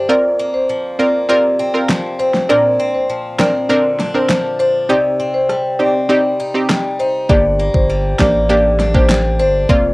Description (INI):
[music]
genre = dancehall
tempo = 100 BPM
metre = 4/4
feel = straight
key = G minor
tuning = A4 = 440 Hz
[part]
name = picked swing-style acoustic guitar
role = arpeggios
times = 0.0-9.9 s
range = F2 to Eb4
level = -24 LUFS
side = left 1 dB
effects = cassette tape
[part]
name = marimba with medium mallets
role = melody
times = 0.1-9.8 s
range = C5 to D5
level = -15 LUFS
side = equal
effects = cassette tape
[part]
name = analog pluck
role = accompaniment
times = 0.1-9.9 s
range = Bb3 to Bb4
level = -19 LUFS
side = right 1 dB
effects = chorus, cassette tape
[part]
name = pop drum kit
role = drums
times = 1.9-9.8 s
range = handclaps, kick drum, rim click, snare drum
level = -16 LUFS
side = equal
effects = overdrive
[part]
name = saturated sub bass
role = bass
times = 7.3-9.9 s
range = F1 to A1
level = -18 LUFS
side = equal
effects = none
[sound]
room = light reverb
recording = home recording on cassette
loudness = -12 LUFS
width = side -23 dB against mid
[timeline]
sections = 0.0-9.9 A section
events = break 0.0-7.3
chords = 0.1 Fsus4; 2.5 Bbadd9; 4.9 Cm; 7.3 Gm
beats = | 0.09 0.69 1.29 1.89 | 2.49 3.09 3.69 4.29 | 4.89 5.49 6.09 6.69 | 7.29 7.89 8.49 9.09 | 9.69